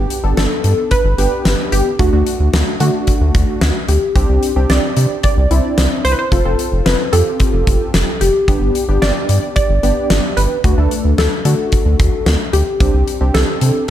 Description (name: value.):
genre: synth-pop.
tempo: 111 BPM.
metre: 4/4.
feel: straight.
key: G major.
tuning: A4 = 440 Hz.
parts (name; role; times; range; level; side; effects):
funky polysynth comp; melody; 0.0-13.9 s; F#4 to D5; -19 LUFS; equal; chorus, digital delay.
warm analog keys; accompaniment; 0.0-13.9 s; A3 to A4; -21 LUFS; left 1 dB; chorus.
round analog bass; bass; 0.0-13.7 s; F1 to D3; -14 LUFS; equal; none.
huge arena drum kit; drums; 0.1-13.7 s; hi-hat, kick drum, snare drum; -18 LUFS; equal; none.
room: little or no reverb.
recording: none.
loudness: -12 LUFS.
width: side -11 dB against mid.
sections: 0.0-13.9 A section.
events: none.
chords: 0.0 G; 2.0 D; 4.2 Csus2; 6.3 F; 8.5 G; 10.6 D; 12.8 Csus2.